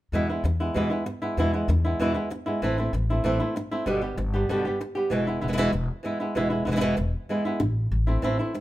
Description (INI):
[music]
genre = flamenco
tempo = 193 BPM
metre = 4/4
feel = straight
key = unclear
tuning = A4 = 441 Hz
[part]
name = flamenco guitar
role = melody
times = 0.1-8.6 s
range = B2 to G4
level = -25 LUFS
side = right 1 dB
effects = none
[part]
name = upright bass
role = bass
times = 0.1-8.4 s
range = E1 to E2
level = -26 LUFS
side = left 1 dB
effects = none
[sound]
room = light reverb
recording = minimal, uncompressed stereo recording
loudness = -23 LUFS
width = side -15 dB against mid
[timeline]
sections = 0.1-8.6 A section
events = none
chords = 0.1 E; 2.6 Am; 3.9 G; 5.1 E; 7.6 Am